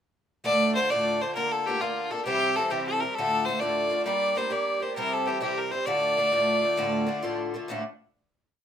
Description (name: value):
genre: celtic folk, Celtic slide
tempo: 133 BPM (dotted quarters)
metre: 12/8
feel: straight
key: D minor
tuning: A4 = 440 Hz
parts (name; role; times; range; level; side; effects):
- clear fiddle; melody; 0.4-7.4 s; F4 to D5; -25 LUFS; equal; none
- picked twelve-string acoustic guitar; accompaniment; 0.4-7.8 s; D2 to G4; -29 LUFS; equal; none
room: light reverb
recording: minimal, uncompressed stereo recording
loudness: -24 LUFS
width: side -9 dB against mid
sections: 0.4-7.7 A section; 7.7-8.6 final chord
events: none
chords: 0.4 Dm; 1.4 Bb/D; 2.3 C; 3.2 Dm; 4.1 Gm; 5.0 C; 5.9 Dm; 7.7 D5